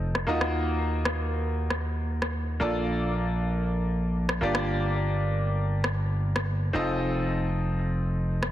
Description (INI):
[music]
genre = nu-disco, nu disco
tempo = 116 BPM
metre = 4/4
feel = straight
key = Bb major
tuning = A4 = 440 Hz
[part]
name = bright grand piano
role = accompaniment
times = 0.0-8.5 s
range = Bb3 to Eb5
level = -30 LUFS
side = equal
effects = tape echo
[part]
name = slap bass with an envelope filter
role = bass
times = 0.0-8.5 s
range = F1 to Eb2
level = -27 LUFS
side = equal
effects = none
[part]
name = electronic rim click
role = drums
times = 0.1-8.5 s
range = none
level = -31 LUFS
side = equal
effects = soft clipping on snare, low-pass filter on snare, low-pass filter on room
[sound]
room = light reverb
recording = dense, heavily limited modern master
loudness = -25 LUFS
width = side -13 dB against mid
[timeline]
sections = 0.0-8.5 A section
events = none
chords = 0.3 Ebmadd9; 2.6 Bbmaj7; 4.4 Gm7; 6.7 F7